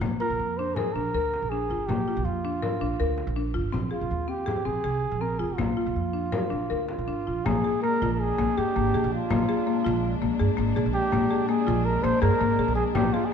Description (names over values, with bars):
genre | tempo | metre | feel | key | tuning
contemporary instrumental, chamber music in an uneven meter | 162 BPM | 5/4 | straight | Bb mixolydian | A4 = 439 Hz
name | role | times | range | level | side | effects
buzzing marimba with hard mallets | arpeggios | 0.0-13.3 s | Bb3 to Bb4 | -28 LUFS | left 6 dB | none
upright bass | bass | 0.0-13.1 s | F1 to Bb2 | -29 LUFS | right 3 dB | none
frame drum | percussion | 0.0-13.2 s | none | -34 LUFS | left 1 dB | none
mellow flugelhorn | melody | 0.2-13.3 s | F4 to C5 | -28 LUFS | right 3 dB | none
warm studio string section | sustained chords | 7.5-13.3 s | Bb2 to D4 | -34 LUFS | left 1 dB | none
room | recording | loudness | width
moderate concert hall reverb, RT60 1.7 s | dark, warm production | -23 LUFS | side -7 dB against mid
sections
0.0-7.5 A section; 7.5-13.3 B section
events
none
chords
0.0 Bb; 3.7 Ab/Bb; 5.6 Bb; 7.5 Bb7